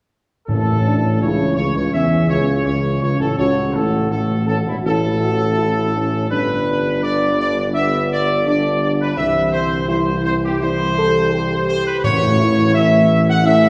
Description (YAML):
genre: classical, ceremonial fanfare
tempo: 83 BPM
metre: 4/4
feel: straight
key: A mixolydian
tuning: A4 = 440 Hz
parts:
  - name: clear trumpet section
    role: melody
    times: 0.5-13.7 s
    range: E4 to F#5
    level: -22 LUFS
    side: equal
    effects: none
  - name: mellow French horn section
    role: sustained chords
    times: 0.5-13.7 s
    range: B3 to A4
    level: -26 LUFS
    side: equal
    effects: none
  - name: warm trombone section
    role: sustained chords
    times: 0.5-13.7 s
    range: E2 to A3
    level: -24 LUFS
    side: equal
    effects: none
  - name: warm tuba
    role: bass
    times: 0.5-13.7 s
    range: E1 to E2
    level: -23 LUFS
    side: equal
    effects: none
  - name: timpani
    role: percussion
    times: 0.5-1.5, 12.0-13.1 s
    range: A2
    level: -24 LUFS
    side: equal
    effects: none
room: wet concert hall reverb, RT60 2.1 s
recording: heard from further back in the room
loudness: -17 LUFS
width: mono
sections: 0.5-13.7 A section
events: none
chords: 0.5 A; 6.3 G; 9.2 C; 12.0 A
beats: | 0.49 1.22 1.95 2.67 | 3.39 4.11 4.85 5.58 | 6.30 7.03 7.74 8.46 | 9.17 9.89 10.62 11.34 | 12.04 12.75 13.46